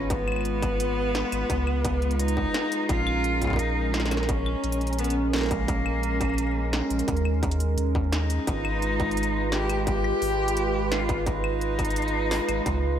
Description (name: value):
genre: IDM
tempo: 86 BPM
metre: 4/4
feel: straight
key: Ab melodic minor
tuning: A4 = 439 Hz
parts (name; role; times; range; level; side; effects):
- rich cello; melody; 0.0-13.0 s; Bb3 to G4; -29 LUFS; left 1 dB; tape echo
- hollow soft pad; sustained chords; 0.0-13.0 s; Ab3 to Cb5; -28 LUFS; right 2 dB; chorus
- warm sub bass; bass; 0.0-13.0 s; Ab1 to Eb2; -28 LUFS; equal; none
- electronic kick drum; drums; 0.1-12.8 s; none; -30 LUFS; equal; distortion, overdrive, small room ambience
- industrial drum kit; drums; 0.1-12.8 s; claves, hi-hat, snare drum; -33 LUFS; equal; overdrive, small room ambience
room: moderate plate reverb, RT60 2.7 s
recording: dreamy mix soaked in reverb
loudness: -23 LUFS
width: side -9 dB against mid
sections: 0.0-13.0 A section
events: none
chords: 0.0 Abm6; 2.9 Bbm7; 8.5 Abm6